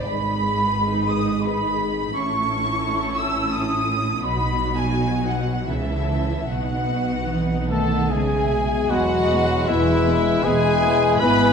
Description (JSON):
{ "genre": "classical, slow romantic movement for symphony orchestra", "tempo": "73-90 BPM", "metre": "3/4", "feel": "rubato", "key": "E major", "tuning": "A4 = 440 Hz", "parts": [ { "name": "warm studio violin section", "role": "melody", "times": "0.0-11.5 s", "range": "F#4 to B5", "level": "-29 LUFS", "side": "left 5 dB", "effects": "none" }, { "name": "mellow large flute ensemble", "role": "second line", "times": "0.0-11.5 s", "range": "B4 to E6", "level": "-26 LUFS", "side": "equal", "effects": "none" }, { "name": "rich studio violin section", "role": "second line", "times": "0.0-11.5 s", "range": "E4 to E6", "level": "-29 LUFS", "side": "left 2 dB", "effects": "none" }, { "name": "warm studio viola section", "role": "accompaniment", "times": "0.0-11.3 s", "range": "E3 to G#4", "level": "-29 LUFS", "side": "equal", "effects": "none" }, { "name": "rich studio cello section", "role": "bass", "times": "0.1-11.5 s", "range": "E2 to E3", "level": "-27 LUFS", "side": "right 2 dB", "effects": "none" }, { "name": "rich symphonic double bass section", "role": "bass", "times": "0.1-11.5 s", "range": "E1 to C#2", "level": "-27 LUFS", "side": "right 2 dB", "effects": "none" }, { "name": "mellow clarinet", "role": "second line", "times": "7.7-11.5 s", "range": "E4 to B4", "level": "-26 LUFS", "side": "left 2 dB", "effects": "none" }, { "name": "dark French horn section", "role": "sustained chords", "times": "7.7-11.5 s", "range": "E3 to B3", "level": "-25 LUFS", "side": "left 5 dB", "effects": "none" }, { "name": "bright trumpet", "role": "stabs", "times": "7.7-11.5 s", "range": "E4 to B4", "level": "-25 LUFS", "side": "right 1 dB", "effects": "none" }, { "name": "warm oboe", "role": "second line", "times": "8.9-11.5 s", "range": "B4", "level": "-31 LUFS", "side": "right 1 dB", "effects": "none" }, { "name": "mellow bassoon", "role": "accompaniment", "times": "8.9-11.5 s", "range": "E3 to G#3", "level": "-26 LUFS", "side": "equal", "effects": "none" }, { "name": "warm trombone section", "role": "sustained chords", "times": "8.9-11.5 s", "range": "E3 to B3", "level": "-27 LUFS", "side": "right 1 dB", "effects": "none" } ], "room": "wet scoring stage reverb, RT60 2.1 s", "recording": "dark, warm production", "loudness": "-19 LUFS", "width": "side -6 dB against mid", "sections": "0.0-8.9 A section; 8.9-11.5 B section", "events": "none", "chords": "0.1 G#m; 2.1 A; 4.2 B; 5.7 A/C#; 6.5 B; 8.9 E", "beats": "| 0.07 0.76 1.44 | 2.14 2.84 3.54 | 4.24 4.94 5.70 | 6.50 7.30 8.11 | 8.91 9.69 10.46 | 11.21" }